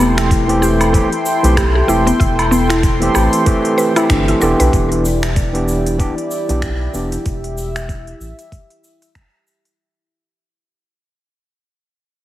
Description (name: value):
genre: organic downtempo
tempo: 95 BPM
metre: 4/4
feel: swing 58% on 16ths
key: E minor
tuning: A4 = 439 Hz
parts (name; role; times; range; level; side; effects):
- overdriven tine electric piano; accompaniment; 0.0-7.2 s; E3 to G4; -18 LUFS; right 1 dB; sidechain pumping, tape echo
- warm analog pad; sustained chords; 0.0-9.8 s; E4 to C6; -20 LUFS; left 1 dB; chorus, sidechain pumping
- mallet-like synth pluck; arpeggios; 0.0-4.7 s; B3 to B4; -19 LUFS; left 1 dB; chorus, tape echo
- warm sub bass; bass; 0.0-8.3 s; D1 to B1; -18 LUFS; equal; none
- organic electronic drum kit; drums; 0.0-9.8 s; finger snaps, hi-hat, shaker, woodblock; -23 LUFS; right 1 dB; overdrive
- electronic kick drum; drums; 0.3-9.3 s; none; -17 LUFS; equal; overdrive
room: moderate lush hall reverb, RT60 2.0 s, digital ambience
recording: heavily compressed radio sound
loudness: -13 LUFS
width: side -14 dB against mid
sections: 0.0-4.7 A section; 4.7-9.8 B section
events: fade-out 4.7-9.8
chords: 0.0 Am7; 4.7 Em7